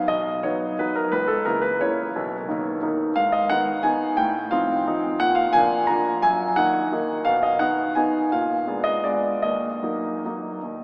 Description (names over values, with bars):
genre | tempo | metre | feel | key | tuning
classical, piano waltz | 146-185 BPM | 3/4 | rubato | Eb minor | A4 = 442 Hz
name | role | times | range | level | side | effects
clear concert grand piano | solo | 0.0-10.8 s | B1 to Bb5 | -20 LUFS | equal | none
room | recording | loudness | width
wet cathedral reverb, RT60 5.0 s | small speaker sound | -20 LUFS | side -31 dB against mid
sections
0.0-10.8 A section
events
none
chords
0.0 B; 1.1 Bbdim/Db; 2.2 Bmaj7; 3.2 Abm; 4.2 F7/A; 5.2 Bb; 6.2 Ebm/Gb; 7.3 Abm/Cb; 8.3 Bb7b9; 9.4 Ebm